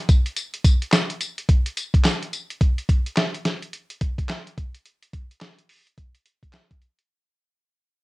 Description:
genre	R&B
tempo	107 BPM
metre	4/4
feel	swing 62% on 16ths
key	none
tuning	none
part	dusty soul sampler-style drum kit	drums	0.1-7.1 s	handclaps, hi-hat, kick drum, snare drum, tambourine	-19 LUFS	equal	cassette tape
room	light reverb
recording	home recording on cassette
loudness	-20 LUFS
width	side -22 dB against mid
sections	0.0-7.1 A section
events	fade-out 0.0-7.1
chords	none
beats	| 0.37 0.93 1.49 2.05 | 2.61 3.17 3.73 4.29 | 4.85 5.41 5.97 6.53

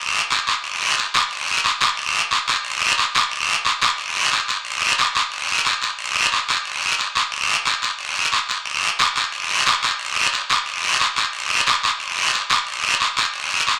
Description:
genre	latin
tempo	180 BPM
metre	4/4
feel	straight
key	none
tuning	none
part	guiro	percussion	0.3-13.8 s	none	-19 LUFS	equal	none
room	wet studio reverb, RT60 0.8 s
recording	none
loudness	-19 LUFS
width	mono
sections	0.6-11.3 A section; 11.3-13.8 B section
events	none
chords	none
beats	0.31 | 0.64 0.97 1.31 1.64 | 1.98 2.31 2.65 2.98 | 3.31 3.65 3.98 4.32 | 4.65 4.98 5.32 5.65 | 5.99 6.32 6.65 6.99 | 7.32 7.66 7.99 8.32 | 8.66 8.99 9.33 9.66 | 9.99 10.33 10.66 11.00 | 11.33 11.66 12.00 12.33 | 12.67 13.00 13.33 13.67

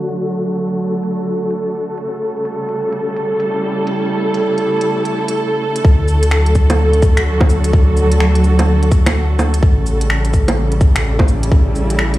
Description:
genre	future garage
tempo	127 BPM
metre	4/4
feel	swing 63% on 16ths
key	unclear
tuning	A4 = 440 Hz
part	dark studio string section	sustained chords	0.0-12.2 s	C#3 to A4	-17 LUFS	right 1 dB	vintage 12-bit sampler grit, sidechain pumping, low-pass filter
part	organic electronic drum kit	drums	0.1-12.2 s	bongos, cabasa, finger snaps, hi-hat	-20 LUFS	right 1 dB	none
part	dark detuned saw bass	bass	5.8-12.2 s	A1 to D2	-15 LUFS	equal	tube saturation, sidechain pumping
part	electronic kick drum	drums	5.8-11.6 s	none	-11 LUFS	equal	none
room	light reverb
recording	played on a big sound system in a bare room, stone room reverb, low-pass filter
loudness	-13 LUFS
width	side -16 dB against mid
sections	0.0-5.8 A section; 5.8-12.2 B section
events	filter sweep on string section 0.0-5.8; filter sweep 0.0-5.8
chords	0.0 D; 2.1 A7; 5.8 D; 9.6 A7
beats	| 0.18 0.65 1.12 1.60 | 2.07 2.54 3.01 3.49 | 3.96 4.43 4.90 5.38 | 5.85 6.32 6.79 7.27 | 7.74 8.21 8.68 9.16 | 9.63 10.10 10.57 11.05 | 11.52 11.99

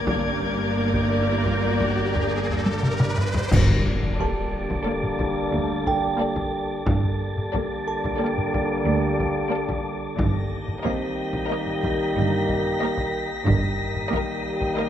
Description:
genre	cinematic, suspense film score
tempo	90 BPM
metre	5/4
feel	straight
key	G minor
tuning	A4 = 440 Hz
part	muted studio violin section	melody	0.0-14.9 s	D5 to Eb5	-32 LUFS	left 4 dB	none
part	muted chamber violin section	second line	0.0-14.9 s	A4 to Bb4	-33 LUFS	left 2 dB	none
part	muted chamber viola section	accompaniment	0.0-14.9 s	Bb3	-30 LUFS	right 1 dB	none
part	wind-like tuned noise texture	sustained chords	0.0-14.9 s	G4 to A5	-31 LUFS	equal	built-in reverb
part	muted studio cello section	bass	0.0-14.0 s	D2 to G2	-28 LUFS	right 2 dB	none
part	muted studio double bass section	bass	0.0-14.0 s	G1 to D2	-28 LUFS	right 3 dB	none
part	riser and impact	sound effects	0.3-6.9 s	none	-30 LUFS	left 1 dB	none
part	muted chamber violin section	texture	0.0-3.1, 10.2-14.9 s	D6 to B6	-33 LUFS	left 5 dB	none
part	mellow French horn section	sustained chords	0.1-14.9 s	Bb3 to G4	-30 LUFS	left 4 dB	none
part	taiko ensemble	drums	0.1-14.9 s	none	-28 LUFS	left 1 dB	none
part	cymbal swell, clash cymbals and concert bass drum	percussion	0.1-4.8 s	none	-29 LUFS	left 1 dB	none
part	mellow trombone section	sustained chords	3.5-14.9 s	D3 to G3	-30 LUFS	right 3 dB	none
part	timpani	percussion	3.5-4.5 s	G2	-28 LUFS	left 1 dB	none
part	music box	texture	4.2-12.8 s	C4 to A5	-31 LUFS	right 4 dB	none
room	light reverb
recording	close, detailed microphones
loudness	-21 LUFS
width	side -10 dB against mid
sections	0.0-3.5 A section; 3.5-14.9 B section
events	riser 0.3-3.5; drum fill 2.7-3.5; band accent 3.5-4.2; impact 3.5-6.9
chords	0.0 Gm; 3.5 Gmadd9; 10.2 Eb/G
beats	| 0.08 0.77 1.46 2.15 2.84 | 3.52 4.19 4.86 5.52 6.18 | 6.85 7.52 8.19 8.86 9.52 | 10.18 10.84 11.49 12.15 12.81 | 13.46 14.12 14.78

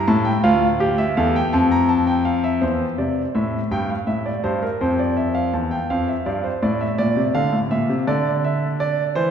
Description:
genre	classical, baroque-style 3-part fugue for grand piano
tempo	55 BPM (dotted quarters)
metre	12/8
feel	straight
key	unclear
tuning	A4 = 438 Hz
part	clear grand piano	solo	0.0-9.3 s	D2 to Bb5	-18 LUFS	equal	none
room	wet church reverb, RT60 2.9 s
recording	recorded in a church or concert hall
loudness	-18 LUFS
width	side -8 dB against mid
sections	0.0-2.6 A section; 2.6-9.3 B section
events	none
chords	0.4 Dm; 2.6 C/E; 4.8 F; 7.0 Bb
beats	0.44 1.53 | 2.62 3.71 4.80 5.89 | 6.98 8.07 9.15

